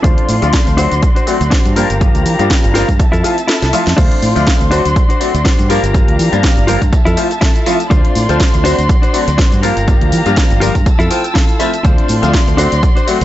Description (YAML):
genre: filtered disco house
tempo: 122 BPM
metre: 4/4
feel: swing 55% on 16ths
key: D minor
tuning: A4 = 440 Hz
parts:
  - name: bright grand piano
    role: accompaniment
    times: 0.0-13.2 s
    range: F3 to F#4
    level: -18 LUFS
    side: left 2 dB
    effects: phaser, sidechain pumping, low-pass filter
  - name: dark chamber violin section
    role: sustained chords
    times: 0.0-13.2 s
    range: F4 to E6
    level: -21 LUFS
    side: left 1 dB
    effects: sidechain pumping, low-pass filter
  - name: direct-recorded clean electric guitar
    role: riff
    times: 0.0-13.2 s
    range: D4 to G5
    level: -20 LUFS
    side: left 1 dB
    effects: vintage 12-bit sampler grit, sidechain pumping, low-pass filter
  - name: fingered electric bass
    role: bass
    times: 0.0-13.2 s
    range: G1 to E3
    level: -16 LUFS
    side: equal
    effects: sidechain pumping, low-pass filter
  - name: electronic kick drum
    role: drums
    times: 0.0-12.9 s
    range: none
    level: -12 LUFS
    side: equal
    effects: small room ambience
  - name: house drum kit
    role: drums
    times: 0.0-13.2 s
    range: crash cymbal, hi-hat, shaker, snare drum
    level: -21 LUFS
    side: equal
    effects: overdrive, sidechain pumping on hats, small room ambience, sidechain pumping on perc, sidechain pumping on cymbals
  - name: tambourine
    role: percussion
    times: 0.0-13.2 s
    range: none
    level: -36 LUFS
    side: right 6 dB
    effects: none
room: little or no reverb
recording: nothing above 7.9 kHz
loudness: -10 LUFS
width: side -14 dB against mid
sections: 0.0-13.2 A section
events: kick drops out 3.5-4.0; drum fill 3.6-4.0; clean electric guitar fill 10.9-11.8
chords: 0.0 Dm7; 0.8 D7; 1.8 Gm7; 3.0 Fmaj7; 4.0 Dm7; 4.7 D7; 5.7 Gm7; 6.9 Fmaj7; 7.9 Dm7; 8.6 D7; 9.6 Gm7; 10.9 Fmaj7; 11.8 Dm7; 12.6 D7